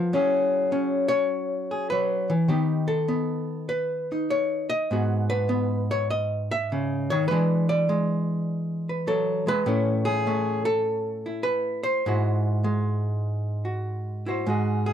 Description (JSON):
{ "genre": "solo jazz", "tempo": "100 BPM", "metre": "4/4", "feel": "swing 67% on 8ths, rubato", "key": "unclear", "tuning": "A4 = 442 Hz", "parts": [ { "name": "archtop guitar, miked and amplified", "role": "solo", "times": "0.0-14.9 s", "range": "G#2 to E5", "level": "-23 LUFS", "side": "equal", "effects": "none" } ], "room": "moderate booth ambience, RT60 0.2 s", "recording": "dry, close 1970s-style studio recording", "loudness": "-23 LUFS", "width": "side -9 dB against mid", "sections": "0.0-14.5 A section", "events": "none", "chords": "0.1 F#9sus4; 2.5 D#aug7; 4.9 G#m7; 7.3 E7; 9.7 Amaj7; 12.0 G#7b13", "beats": "| 0.11 0.70 1.30 1.90 | 2.49 3.09 3.69 4.29 | 4.90 5.50 6.10 6.70 | 7.30 7.89 8.49 9.08 | 9.67 10.27 10.86 11.45 | 12.04 12.64 13.24 13.85 | 14.46" }